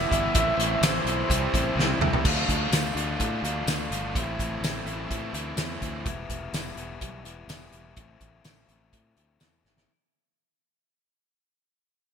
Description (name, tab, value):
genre	indie rock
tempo	126 BPM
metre	4/4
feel	straight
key	unclear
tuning	A4 = 444 Hz
part	electric guitar through a small old amp	melody	0.0-1.7 s	C5 to E5	-30 LUFS	right 4 dB	lush chorus, digital delay
part	glockenspiel with rubber mallets	second line	0.0-1.7 s	C6 to E6	-36 LUFS	left 8 dB	none
part	combo organ	sustained chords	0.0-2.2 s	G4 to C6	-40 LUFS	right 1 dB	none
part	biting overdriven guitar	riff	0.0-9.9 s	A2 to F4	-32 LUFS	left 7 dB	none
part	cranked stack guitar	riff	0.0-6.1 s	E2 to F4	-33 LUFS	right 9 dB	overdrive, wide subtle chorus, digital delay
part	fingered electric bass	bass	0.0-9.9 s	E1 to A2	-33 LUFS	right 1 dB	none
part	loose indie drum kit	drums	0.1-9.9 s	crash cymbal, hi-hat, kick drum, snare drum, tambourine, toms	-27 LUFS	equal	none
room	light reverb, small room ambience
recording	bright 1980s-style digital production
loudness	-24 LUFS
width	side -7 dB against mid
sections	0.0-2.2 A section; 2.2-9.9 B section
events	drum fill 1.8-2.2, 9.7; fade-out 2.2-9.9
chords	0.3 Am; 1.3 C; 2.2 Dm; 4.2 Am; 6.1 Em; 8.0 Am